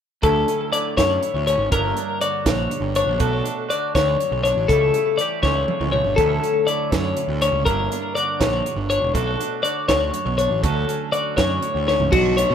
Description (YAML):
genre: math rock and midwest emo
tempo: 81 BPM (dotted quarters)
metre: 6/8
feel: straight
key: D major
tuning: A4 = 440 Hz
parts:
  - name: twangy electric guitar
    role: accompaniment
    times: 0.2-12.5 s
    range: D2 to G4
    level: -28 LUFS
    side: right 17 dB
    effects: wide subtle chorus
  - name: twelve-string electric guitar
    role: arpeggios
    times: 0.2-12.5 s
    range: F#4 to D5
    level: -20 LUFS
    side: left 4 dB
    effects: tape echo
  - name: fuzz picked electric bass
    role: bass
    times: 0.2-12.5 s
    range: E1 to B2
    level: -24 LUFS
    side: right 2 dB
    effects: overdrive
  - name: crisp fusion drum kit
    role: drums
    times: 0.2-12.5 s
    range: crash cymbal, hi-hat, kick drum, snare drum, toms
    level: -25 LUFS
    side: right 3 dB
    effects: none
room: small room ambience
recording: rough home demo mix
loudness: -18 LUFS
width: side -8 dB against mid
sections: 0.2-12.1 A section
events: drum fill 5.4-6.2, 11.9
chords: 0.2 Dmaj9; 1.7 Gm6; 3.2 Bm7; 4.7 A7/C#; 6.2 Dmaj9; 7.7 Gm6; 9.1 Bm7; 10.6 Dmaj7